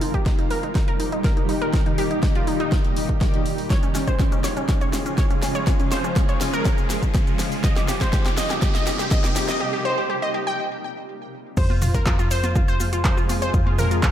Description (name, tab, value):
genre	progressive house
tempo	122 BPM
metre	4/4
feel	straight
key	F minor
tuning	A4 = 439 Hz
part	shimmering ambient pad	sustained chords	0.0-14.1 s	Bb2 to Ab4	-28 LUFS	equal	chorus, built-in reverb, sidechain pumping
part	wide unison pluck	arpeggios	0.0-14.1 s	Db4 to G5	-26 LUFS	equal	sidechain pumping, ping-pong delay
part	tight sequencer bass	bass	0.0-14.1 s	C2 to F2	-24 LUFS	equal	sidechain pumping, high-pass filter
part	deep house drum kit	drums	0.0-14.1 s	crash cymbal, handclaps, hi-hat, shaker, snare drum	-30 LUFS	equal	overdrive, high-pass filter on snare, high-pass filter on hats, high-pass filter on perc, high-pass filter on cymbals
part	electronic kick drum	drums	0.1-14.1 s	none	-21 LUFS	equal	overdrive
part	riser	sound effects	6.3-9.6 s	none	-34 LUFS	equal	none
part	electronic congas and toms	percussion	11.7-14.1 s	none	-31 LUFS	left 3 dB	overdrive, sidechain pumping on perc, sidechain pumping on toms
room	light reverb, digital ambience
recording	none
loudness	-19 LUFS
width	side -11 dB against mid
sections	0.0-11.6 A section; 11.6-14.1 B section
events	build-up 0.0-11.6; drum fill 0.0-9.6; filter sweep on synth pluck 0.0-11.6; riser 6.3-9.6; break 9.6-11.6; drop 11.6-14.1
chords	0.0 Eb; 3.7 Db; 7.6 Cm7; 11.6 Fm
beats	0.26 0.75 1.24 | 1.74 2.23 2.72 3.21 | 3.70 4.20 4.69 5.18 | 5.67 6.16 6.65 7.15 | 7.64 8.13 8.62 9.11 | 9.61 10.10 10.59 11.08 | 11.57 12.06 12.56 13.05 | 13.54 14.03